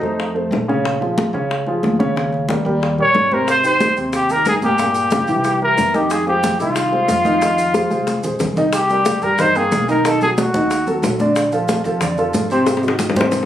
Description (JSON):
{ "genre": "Afro-Cuban jazz", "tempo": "183 BPM", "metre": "4/4", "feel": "straight", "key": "F minor", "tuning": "A4 = 440 Hz", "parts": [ { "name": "breathy trumpet", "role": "melody", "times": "0.0-0.4, 3.0-11.0 s", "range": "Eb4 to Db5", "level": "-16 LUFS", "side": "equal", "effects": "none" }, { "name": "warm upright piano", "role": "accompaniment", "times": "0.0-13.4 s", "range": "Bb2 to G5", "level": "-19 LUFS", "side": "right 1 dB", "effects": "none" }, { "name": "upright bass", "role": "bass", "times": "0.0-13.5 s", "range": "Ab1 to Ab2", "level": "-26 LUFS", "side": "equal", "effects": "none" }, { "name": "bongos", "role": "percussion", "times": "0.0-13.5 s", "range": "none", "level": "-23 LUFS", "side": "left 5 dB", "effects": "none" }, { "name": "congas", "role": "percussion", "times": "0.2-13.5 s", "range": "none", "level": "-23 LUFS", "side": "equal", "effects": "none" }, { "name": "maracas", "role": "percussion", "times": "3.5-13.5 s", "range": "none", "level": "-32 LUFS", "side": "right 3 dB", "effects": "none" } ], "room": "light reverb", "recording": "recorded on a phone in the room, studio reverb", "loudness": "-15 LUFS", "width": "side -11 dB against mid", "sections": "0.0-8.7 A section; 8.7-13.5 B section", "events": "drum fill 7.7-8.7, 12.7-13.5", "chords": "0.2 F; 0.8 Bbm7; 2.2 Eb7; 3.5 Abmaj9; 4.8 Gm7b5; 5.4 C7; 6.1 Fm7; 8.7 Cm7; 10.0 B7; 11.4 Bbmaj7; 12.7 Ab7" }